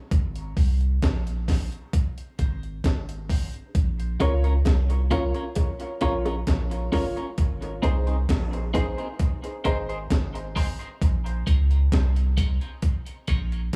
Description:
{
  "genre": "dub reggae",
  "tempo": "66 BPM",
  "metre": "4/4",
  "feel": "straight",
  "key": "Bb minor",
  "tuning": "A4 = 439 Hz",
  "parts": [
    { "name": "soft dub sub bass", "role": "bass", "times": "0.1-13.7 s", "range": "G1 to Db2", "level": "-27 LUFS", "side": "equal", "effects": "none" },
    { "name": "breakbeat sampler-style drum kit", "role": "drums", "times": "0.1-13.8 s", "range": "hi-hat, kick drum, snare drum", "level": "-27 LUFS", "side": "equal", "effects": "none" },
    { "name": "dark grand piano", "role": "stabs", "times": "0.6-13.5 s", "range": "Eb4 to Db5", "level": "-36 LUFS", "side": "equal", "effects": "high-pass filter, dub echo" },
    { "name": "clean electric guitar", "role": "accompaniment", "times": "4.2-13.6 s", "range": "C4 to Db5", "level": "-34 LUFS", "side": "equal", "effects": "tremolo, high-pass filter, dub echo" },
    { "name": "bongos", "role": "percussion", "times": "4.2-7.1 s", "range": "none", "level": "-39 LUFS", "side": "equal", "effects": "none" }
  ],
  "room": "little or no reverb",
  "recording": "echo-heavy mix, small room ambience",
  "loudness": "-25 LUFS",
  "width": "mono",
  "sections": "0.0-13.8 A section",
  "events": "break 0.0-3.7; part muted 7.4-13.8; filter sweep 7.4-13.8",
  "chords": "0.1 Ab; 3.7 Bbm; 7.4 Ab; 11.0 Bbm",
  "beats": "| 0.12 1.03 1.93 2.84 | 3.75 4.66 5.57 6.47 | 7.38 8.29 9.20 10.10 | 11.01 11.92 12.82 13.73"
}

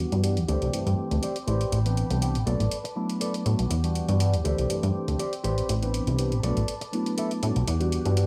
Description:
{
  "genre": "filtered disco house",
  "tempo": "121 BPM",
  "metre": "4/4",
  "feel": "swing 53% on 16ths",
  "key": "unclear",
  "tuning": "A4 = 439 Hz",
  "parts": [
    { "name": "bright tine electric piano", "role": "accompaniment", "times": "0.0-8.3 s", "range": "E3 to B4", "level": "-32 LUFS", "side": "equal", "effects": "phaser, vintage 12-bit sampler grit, low-pass filter" },
    { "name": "warm chamber string section", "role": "sustained chords", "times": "0.0-8.3 s", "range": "C4 to D6", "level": "-42 LUFS", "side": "equal", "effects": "low-pass filter" },
    { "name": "plucky analog bass", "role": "bass", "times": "0.0-8.3 s", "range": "A1 to A2", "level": "-27 LUFS", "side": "equal", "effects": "low-pass filter" },
    { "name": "electronic hi-hat", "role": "drums", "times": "0.1-8.3 s", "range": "none", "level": "-39 LUFS", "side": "equal", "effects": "overdrive, small room ambience" },
    { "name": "clean electric guitar", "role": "riff", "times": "0.5-7.8 s", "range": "G4 to E5", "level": "-35 LUFS", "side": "equal", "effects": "low-pass filter" }
  ],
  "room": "light reverb",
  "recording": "small room ambience",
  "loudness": "-26 LUFS",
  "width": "mono",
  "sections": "0.0-8.3 A section",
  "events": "filter sweep 0.0-8.3",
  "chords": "0.5 D7sus4; 1.5 Am11; 2.5 Bm7; 3.7 Em9; 4.5 D7sus4; 5.4 Am11; 6.4 Bm7; 7.7 Em9",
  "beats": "0.24 0.73 1.23 | 1.73 2.22 2.72 3.21 | 3.71 4.21 4.70 5.20 | 5.69 6.19 6.69 7.18 | 7.68 8.17"
}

